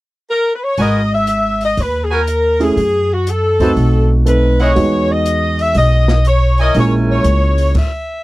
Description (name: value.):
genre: jazz, big band swing.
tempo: 120 BPM.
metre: 4/4.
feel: swing 66% on 8ths.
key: G# minor.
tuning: A4 = 439 Hz.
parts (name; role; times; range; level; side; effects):
clear saxophone section; melody; 0.3-8.2 s; F#4 to E5; -16 LUFS; left 1 dB; none.
bright trumpet section; stabs; 0.8-7.2 s; D#4 to A5; -20 LUFS; right 2 dB; none.
upright bass; bass; 0.8-7.7 s; G#1 to F#2; -14 LUFS; equal; none.
open jazz drum kit; drums; 0.8-7.9 s; crash cymbal, hi-hat, kick drum, snare drum; -21 LUFS; equal; none.
warm baby grand piano; accompaniment; 2.6-7.8 s; G#3 to A4; -18 LUFS; right 3 dB; none.
room: little or no reverb.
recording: dry, close 1970s-style studio recording.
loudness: -12 LUFS.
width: side -18 dB against mid.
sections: 0.8-8.2 A section.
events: stop 7.8-8.2.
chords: 0.0 N.C.; 0.8 G#m9; 2.8 F#m; 3.8 B7b9; 4.8 Emaj9; 6.8 A#m7b5.